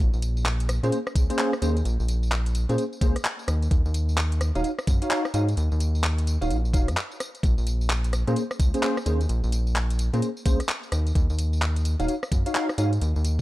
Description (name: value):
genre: UK garage, two-step garage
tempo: 129 BPM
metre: 4/4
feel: swing 62% on 16ths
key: Bb minor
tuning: A4 = 440 Hz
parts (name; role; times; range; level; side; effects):
- rubbery square bass; bass; 0.0-13.4 s; Eb1 to Bb2; -24 LUFS; equal; none
- garage drum kit; drums; 0.1-13.4 s; handclaps, hi-hat, rim click, tambourine; -31 LUFS; equal; none
- bell-like tine electric piano; stabs; 0.8-12.9 s; Bb3 to F5; -28 LUFS; equal; ensemble chorus, analog delay
- electronic kick drum; drums; 1.2-13.4 s; none; -22 LUFS; equal; none
room: little or no reverb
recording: dry, gritty hardware recording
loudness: -22 LUFS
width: side -17 dB against mid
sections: 0.0-13.4 A section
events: none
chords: 0.0 Bbm9; 3.7 Ebm9; 7.4 Bbm9; 11.2 Ebm9